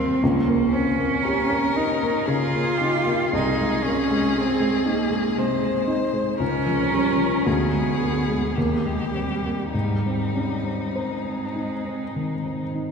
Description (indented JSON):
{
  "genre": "classical, slow romantic movement for piano trio",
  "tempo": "49-60 BPM",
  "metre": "3/4",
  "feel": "rubato",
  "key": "Ab major",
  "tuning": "A4 = 441 Hz",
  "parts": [
    { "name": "rich violin", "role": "melody", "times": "0.0-12.7 s", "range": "Db4 to C5", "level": "-29 LUFS", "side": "left 5 dB", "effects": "none" },
    { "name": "rich cello", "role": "second line", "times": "0.0-12.7 s", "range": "G3 to F4", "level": "-24 LUFS", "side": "right 2 dB", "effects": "none" },
    { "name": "dark baby grand piano", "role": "accompaniment", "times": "0.0-12.9 s", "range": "C2 to C5", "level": "-24 LUFS", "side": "left 1 dB", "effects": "none" }
  ],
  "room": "wet cathedral reverb, RT60 5.1 s",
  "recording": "heard from further back in the room",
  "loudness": "-20 LUFS",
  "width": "side -6 dB against mid",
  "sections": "0.0-12.9 A section",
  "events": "none",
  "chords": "0.2 Eb7/Db; 3.3 Ab/C; 6.4 Bbm/Db; 7.5 Bb7b9/D; 8.6 Eb; 9.7 Ab"
}